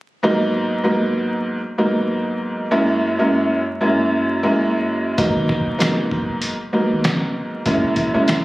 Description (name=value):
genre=hip hop, boom-bap hip-hop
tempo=97 BPM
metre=4/4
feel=swing 59% on 16ths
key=G# minor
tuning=A4 = 440 Hz
part: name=warm upright piano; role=accompaniment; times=0.2-8.4 s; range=F#2 to E4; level=-17 LUFS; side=equal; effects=none
part: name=soft dub sub bass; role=bass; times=5.2-8.1 s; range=F#1 to G#1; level=-28 LUFS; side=equal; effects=none
part: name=trip hop sampler-style drum kit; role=drums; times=5.2-8.4 s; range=hi-hat, kick drum, snare drum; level=-22 LUFS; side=equal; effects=none
room=light reverb, digital ambience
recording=recorded on a phone in the room, club reverb, vinyl crackle, compression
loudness=-17 LUFS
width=side -18 dB against mid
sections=0.2-8.4 A section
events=none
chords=0.2 G#m7; 2.7 F#7; 5.2 G#m7; 7.7 F#7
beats=| 0.23 0.85 1.47 2.09 | 2.71 3.33 3.95 4.56 | 5.18 5.80 6.42 7.04 | 7.66 8.28